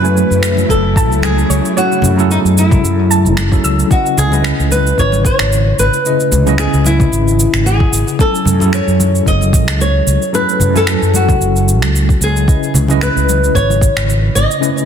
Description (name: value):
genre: sunset chillout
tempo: 112 BPM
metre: 4/4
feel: swing 55% on 16ths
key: C# minor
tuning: A4 = 443 Hz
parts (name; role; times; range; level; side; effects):
- flamenco guitar; melody; 0.0-14.9 s; D#4 to D#5; -16 LUFS; left 2 dB; ping-pong delay
- tine electric piano; accompaniment; 0.0-14.9 s; C#3 to G#5; -18 LUFS; moving between left 4 dB and right 5 dB; medium stereo tremolo, auto-pan
- soft string machine; sustained chords; 0.0-3.9 s; C#3 to E4; -22 LUFS; equal; ensemble chorus
- fretless electric bass; bass; 0.0-14.4 s; F#1 to F#2; -14 LUFS; equal; none
- electronic shaker and finger snaps; drums; 0.0-14.9 s; none; -20 LUFS; right 2 dB; overdrive, soft clipping on snare
- congas; percussion; 0.6-13.8 s; none; -22 LUFS; left 2 dB; none
- electronic kick drum; drums; 0.7-13.9 s; none; -13 LUFS; equal; overdrive
- soft round pluck; arpeggios; 1.0-3.9 s; C#5 to E6; -22 LUFS; right 2 dB; wide subtle chorus, ping-pong delay
room: light reverb, digital ambience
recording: dense, heavily limited modern master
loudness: -10 LUFS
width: side -8 dB against mid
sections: 0.0-3.9 A section; 3.9-14.9 A section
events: none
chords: 0.0 F#m7; 3.9 C#m7; 8.2 F#m7; 12.5 C#m7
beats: 0.16 0.69 1.23 | 1.77 2.30 2.84 3.37 | 3.91 4.45 4.98 5.52 | 6.05 6.59 7.12 7.66 | 8.20 8.73 9.27 9.80 | 10.34 10.87 11.41 11.95 | 12.48 13.02 13.55 14.09 | 14.62